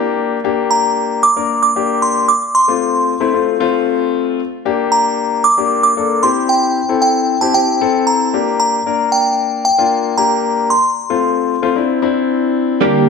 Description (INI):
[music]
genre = pop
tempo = 114 BPM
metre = 4/4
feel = straight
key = G dorian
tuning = A4 = 440 Hz
[part]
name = warm concert grand piano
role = accompaniment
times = 0.0-13.1 s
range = A3 to Bb4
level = -16 LUFS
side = left 7 dB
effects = none
[part]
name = glassy synth bell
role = melody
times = 0.7-11.7 s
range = G5 to D6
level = -14 LUFS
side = right 1 dB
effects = chorus, slapback echo
[part]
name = sweeping resonant pad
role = sustained chords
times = 12.8-13.1 s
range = D3 to G4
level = -13 LUFS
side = right 3 dB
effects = chorus
[part]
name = direct-recorded clean electric guitar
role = riff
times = 12.8-13.1 s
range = G3 to G4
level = -15 LUFS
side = right 12 dB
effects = lush chorus
[sound]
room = wet echo chamber reverb, RT60 1.6 s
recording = 1960s-style stereo with parts hard left and right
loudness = -12 LUFS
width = side -5 dB against mid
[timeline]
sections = 0.0-12.8 A section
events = none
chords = 0.0 Gm; 2.3 F; 4.4 Gm; 6.2 C; 8.3 Gm; 10.7 F; 11.8 Cadd9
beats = | 0.18 0.71 1.23 1.76 | 2.29 2.81 3.34 3.87 | 4.39 4.92 5.44 5.97 | 6.50 7.02 7.55 8.07 | 8.60 9.13 9.65 10.18 | 10.71 11.23 11.76 12.29 | 12.81